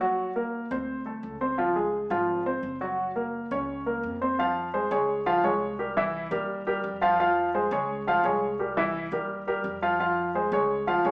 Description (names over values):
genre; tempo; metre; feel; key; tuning
latin, salsa; 171 BPM; 4/4; straight; F minor; A4 = 441 Hz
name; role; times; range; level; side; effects
warm baby grand piano; accompaniment; 0.0-11.1 s; E3 to F5; -24 LUFS; equal; none
upright bass; bass; 0.0-11.1 s; Gb1 to F2; -41 LUFS; equal; none
room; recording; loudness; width
wet large studio reverb, RT60 0.8 s; band playing live in one room, small speaker sound; -24 LUFS; side -29 dB against mid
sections
0.0-4.4 A section; 4.4-11.1 B section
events
none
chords
0.2 Ebm; 0.9 D5; 1.6 Dbmaj7; 3.0 Gb; 4.4 Fm; 5.1 Db; 5.8 C7; 6.5 Ebadd9; 7.2 Fm; 7.9 Db; 8.6 C7; 9.3 Ebadd9; 10.0 Fm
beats
| 0.18 0.54 0.88 1.23 | 1.58 1.93 2.28 2.63 | 2.98 3.33 3.69 4.04 | 4.39 4.74 5.09 5.44 | 5.79 6.14 6.49 6.84 | 7.19 7.54 7.89 8.24 | 8.59 8.94 9.29 9.64 | 9.99 10.34 10.69 11.04